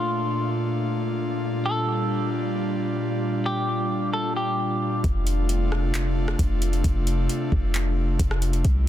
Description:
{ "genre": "hip hop, atmospheric cloud-rap", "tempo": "133 BPM", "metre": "4/4", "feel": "half-time", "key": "F major", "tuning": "A4 = 440 Hz", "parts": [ { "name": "semi-hollow electric guitar", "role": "melody", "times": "0.0-5.0 s", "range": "F4 to A4", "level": "-29 LUFS", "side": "equal", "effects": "ping-pong delay" }, { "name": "airy breathy pad", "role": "sustained chords", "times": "0.0-8.9 s", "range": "Bb2 to G4", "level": "-26 LUFS", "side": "equal", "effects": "chorus, sidechain pumping" }, { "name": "warm 808-style bass", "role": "bass", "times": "5.0-8.9 s", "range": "F1 to C2", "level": "-23 LUFS", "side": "equal", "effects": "none" }, { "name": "smooth R&B drum kit", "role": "drums", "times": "5.0-8.8 s", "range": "handclaps, hi-hat, kick drum, rim click", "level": "-26 LUFS", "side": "equal", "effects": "none" } ], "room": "little or no reverb", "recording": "dense, heavily limited modern master", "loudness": "-22 LUFS", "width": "side -12 dB against mid", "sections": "0.0-5.0 A section; 5.0-8.9 B section", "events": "none", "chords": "0.0 Bbmaj7; 1.4 Gm7; 5.0 F6" }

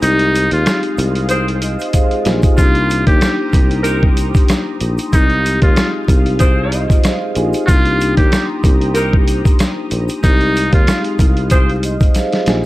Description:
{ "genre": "hip hop, boom-bap hip-hop", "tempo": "94 BPM", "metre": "4/4", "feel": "swing 55% on 16ths", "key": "unclear", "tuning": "A4 = 439 Hz", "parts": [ { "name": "trumpet with metal mute", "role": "melody", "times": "0.0-11.0 s", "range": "Eb4 to G4", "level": "-18 LUFS", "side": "equal", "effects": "high-pass filter, low-pass filter, tape echo" }, { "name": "vibraphone with soft mallets", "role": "accompaniment", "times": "0.0-12.7 s", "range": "Ab3 to Ab5", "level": "-20 LUFS", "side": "left 2 dB", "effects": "cassette tape, high-pass filter, low-pass filter" }, { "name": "lush unison pad", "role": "sustained chords", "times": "0.0-12.7 s", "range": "Ab3 to Eb6", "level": "-28 LUFS", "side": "equal", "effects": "chorus, phaser, high-pass filter, low-pass filter" }, { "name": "sustaining fretless electric bass", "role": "bass", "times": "0.0-12.6 s", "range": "Bb1 to Eb2", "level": "-18 LUFS", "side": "equal", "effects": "tube saturation" }, { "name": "dusty soul sampler-style drum kit", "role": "drums", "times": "0.0-12.6 s", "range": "hi-hat, kick drum, rim click, snare drum", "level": "-13 LUFS", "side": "equal", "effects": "none" }, { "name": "egg shaker", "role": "percussion", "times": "0.0-12.6 s", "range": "none", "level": "-37 LUFS", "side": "right 1 dB", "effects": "none" }, { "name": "bright saxophone section", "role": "stabs", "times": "1.3-11.7 s", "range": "C4 to C5", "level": "-21 LUFS", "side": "equal", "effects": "high-pass filter, low-pass filter, tape echo" } ], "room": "small room ambience", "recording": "dry, gritty hardware recording, transformer saturation, vinyl crackle", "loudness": "-12 LUFS", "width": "side -17 dB against mid", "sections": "0.0-12.7 A section", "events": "break 0.0-2.6; drum fill 1.9-2.6, 12.2-12.7", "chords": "0.0 Fm9/C; 2.6 Cm7; 5.1 Fm9/C; 7.7 Cm7; 10.2 Fm9/C" }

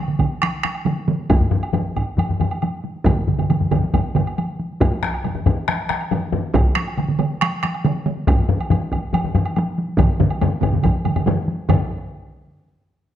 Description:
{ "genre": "japanese traditional, taiko drum ensemble", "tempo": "139 BPM", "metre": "4/4", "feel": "straight", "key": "none", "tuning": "none", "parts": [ { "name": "taiko ensemble", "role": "percussion", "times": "0.1-11.9 s", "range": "none", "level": "-25 LUFS", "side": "left 1 dB", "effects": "none" }, { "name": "taiko ensemble", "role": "percussion", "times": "0.1-12.1 s", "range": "none", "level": "-22 LUFS", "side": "right 4 dB", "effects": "none" }, { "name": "taiko ensemble", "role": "percussion", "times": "0.2-11.9 s", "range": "none", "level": "-21 LUFS", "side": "right 1 dB", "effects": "none" }, { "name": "woodblock", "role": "percussion", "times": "0.2-11.9 s", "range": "none", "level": "-30 LUFS", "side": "right 3 dB", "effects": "none" }, { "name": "taiko ensemble", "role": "percussion", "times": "1.3-12.1 s", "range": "none", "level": "-21 LUFS", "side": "left 3 dB", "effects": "none" } ], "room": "moderate recital hall reverb, RT60 1.3 s", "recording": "close, detailed microphones", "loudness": "-18 LUFS", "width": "side -11 dB against mid", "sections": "0.0-11.7 A section; 11.7-13.2 B section", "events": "speeding up 0.0-13.2", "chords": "none" }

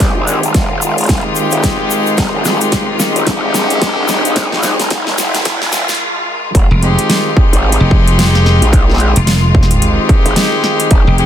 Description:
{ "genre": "glitch hop", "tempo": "110 BPM", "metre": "4/4", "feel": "swing 59% on 16ths", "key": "F minor", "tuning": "A4 = 440 Hz", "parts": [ { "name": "bright studio string section", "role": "sustained chords", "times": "0.0-11.3 s", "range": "Eb3 to G4", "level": "-19 LUFS", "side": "left 1 dB", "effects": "vintage 12-bit sampler grit, sidechain pumping" }, { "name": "warm horn section", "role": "stabs", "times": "0.0-11.3 s", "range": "Ab3 to G4", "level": "-17 LUFS", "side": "left 2 dB", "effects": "sidechain pumping, low-pass filter, ping-pong delay" }, { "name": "growl bass", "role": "bass", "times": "0.0-11.0 s", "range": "Eb1 to Bb1", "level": "-16 LUFS", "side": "equal", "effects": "chorus, overdrive, high-pass filter" }, { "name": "dubstep drum kit", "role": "drums", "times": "0.0-11.3 s", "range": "hi-hat, snare drum", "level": "-18 LUFS", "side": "equal", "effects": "none" }, { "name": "electronic kick drum", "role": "drums", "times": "0.0-11.0 s", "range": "none", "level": "-12 LUFS", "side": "equal", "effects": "distortion" }, { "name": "egg shaker", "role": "percussion", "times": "0.0-6.0 s", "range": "none", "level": "-23 LUFS", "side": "left 5 dB", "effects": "none" }, { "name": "riser and noise sweep", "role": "sound effects", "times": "0.5-6.5 s", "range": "none", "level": "-23 LUFS", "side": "right 1 dB", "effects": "none" }, { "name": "slap bass", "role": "bass", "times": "6.7-11.3 s", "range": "F1", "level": "-11 LUFS", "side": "equal", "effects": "none" } ], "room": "light reverb, small room ambience", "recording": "dense, heavily limited modern master, high-pass filter", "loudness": "-10 LUFS", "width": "side -10 dB against mid", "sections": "0.0-6.5 A section; 6.5-11.3 B section", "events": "build-up 0.0-6.5; drum fill 0.0-6.0; filter sweep on horn section 0.0-6.5; filter sweep 0.0-6.5; riser 0.5-6.0; noise sweep 4.4-6.5; break 6.0-6.5; drop 6.5-11.3", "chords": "0.0 Fm7" }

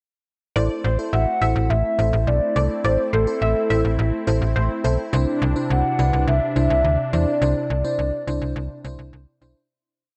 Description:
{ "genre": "synth-pop", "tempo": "105 BPM", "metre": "4/4", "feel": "straight", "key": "A dorian", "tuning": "A4 = 440 Hz", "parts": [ { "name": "funky polysynth comp", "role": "second line", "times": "0.6-5.0 s", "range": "C5 to E5", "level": "-31 LUFS", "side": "equal", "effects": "chorus, tape echo" }, { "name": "FM electric piano with soft pad layer", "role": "accompaniment", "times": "0.6-9.6 s", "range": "D4 to C5", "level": "-30 LUFS", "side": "equal", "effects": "chorus, tremolo" }, { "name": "warm analog pad", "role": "sustained chords", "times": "0.6-9.7 s", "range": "C3 to E4", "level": "-30 LUFS", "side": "equal", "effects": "subtle chorus" }, { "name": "slap-like FM bass", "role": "bass", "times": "0.6-9.5 s", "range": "A1 to E2", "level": "-23 LUFS", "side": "equal", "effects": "none" }, { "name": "hollow clarinet-like synth lead", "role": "melody", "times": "1.1-9.1 s", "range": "A4 to F#5", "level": "-25 LUFS", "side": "equal", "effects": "chorus" } ], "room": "light reverb, digital ambience", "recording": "none", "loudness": "-21 LUFS", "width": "mono", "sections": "0.6-9.7 chorus", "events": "fade-out 7.4-9.7", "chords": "0.6 Am; 5.1 Cadd9" }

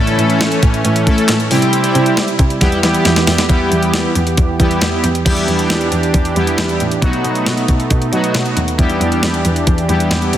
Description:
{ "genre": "synth-pop", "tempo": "136 BPM", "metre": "4/4", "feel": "straight", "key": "E minor", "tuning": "A4 = 442 Hz", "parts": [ { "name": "analog synth brass", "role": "accompaniment", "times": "0.0-10.4 s", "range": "F#3 to A4", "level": "-17 LUFS", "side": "left 1 dB", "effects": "chorus" }, { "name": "brassy analog pad", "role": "sustained chords", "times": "0.0-10.4 s", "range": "C3 to G4", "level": "-19 LUFS", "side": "right 2 dB", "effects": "chorus" }, { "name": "warm cello", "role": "bass", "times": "0.0-10.4 s", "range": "C2 to A3", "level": "-19 LUFS", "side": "equal", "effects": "none" }, { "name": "clean 12-bit digital drum machine", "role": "drums", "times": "0.1-10.4 s", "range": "crash cymbal, handclaps, hi-hat, kick drum, snare drum", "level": "-16 LUFS", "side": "equal", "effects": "overdrive" } ], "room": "moderate concert hall reverb, RT60 2.3 s", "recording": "dense, heavily limited modern master", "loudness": "-12 LUFS", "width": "side -11 dB against mid", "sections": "0.0-3.5 A section; 3.5-5.3 B section; 5.3-10.4 C section", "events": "drum fill 2.6-3.5", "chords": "0.0 A; 1.5 C; 2.6 Em; 5.3 Em7; 7.0 B7; 8.8 Em7" }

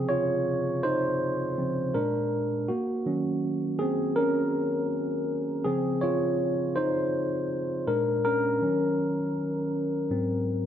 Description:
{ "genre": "R&B", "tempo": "81 BPM", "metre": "4/4", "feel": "straight", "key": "Db major", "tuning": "A4 = 441 Hz", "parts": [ { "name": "tine electric piano", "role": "solo", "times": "0.0-10.7 s", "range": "Ab2 to Db5", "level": "-25 LUFS", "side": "equal", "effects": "lush chorus" } ], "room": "moderate plate reverb, RT60 3.1 s", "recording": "lossy compression artefacts", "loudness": "-25 LUFS", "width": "side -10 dB against mid", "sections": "0.0-10.7 A section", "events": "tine electric piano solo 0.0-10.7", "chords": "0.0 Dbmaj9; 1.9 Bb7; 2.7 Ebm7; 5.6 Dbmaj9; 7.9 Bb7; 8.6 Ebm7; 10.1 Ab7" }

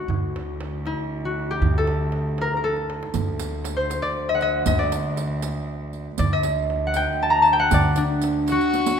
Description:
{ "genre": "Persian modal ensemble", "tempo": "79 BPM (dotted quarters)", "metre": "6/8", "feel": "straight", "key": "D dastgah homayun", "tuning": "A4 = 440 Hz", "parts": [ { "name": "concert harp", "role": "melody", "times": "0.0-9.0 s", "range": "C4 to Bb5", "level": "-22 LUFS", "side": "left 1 dB", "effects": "none" }, { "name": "rich cello", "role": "drone", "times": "0.0-9.0 s", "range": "D2", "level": "-30 LUFS", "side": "right 1 dB", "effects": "none" }, { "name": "upright bass", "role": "bass", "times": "0.1-8.6 s", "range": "D2", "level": "-26 LUFS", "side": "equal", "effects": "none" }, { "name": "tombak", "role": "percussion", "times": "0.1-9.0 s", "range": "none", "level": "-30 LUFS", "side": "right 5 dB", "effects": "none" }, { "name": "riq", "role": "percussion", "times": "3.1-9.0 s", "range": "none", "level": "-31 LUFS", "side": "right 7 dB", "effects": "none" }, { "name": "warm violin", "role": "second line", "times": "8.5-9.0 s", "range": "F#4", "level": "-23 LUFS", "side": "left 3 dB", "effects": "none" } ], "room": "wet recital hall reverb, RT60 1.4 s", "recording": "minimal, uncompressed stereo recording", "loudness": "-20 LUFS", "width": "side -7 dB against mid", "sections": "0.0-9.0 A section", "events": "drum fill 2.6-3.1, 8.7", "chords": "none" }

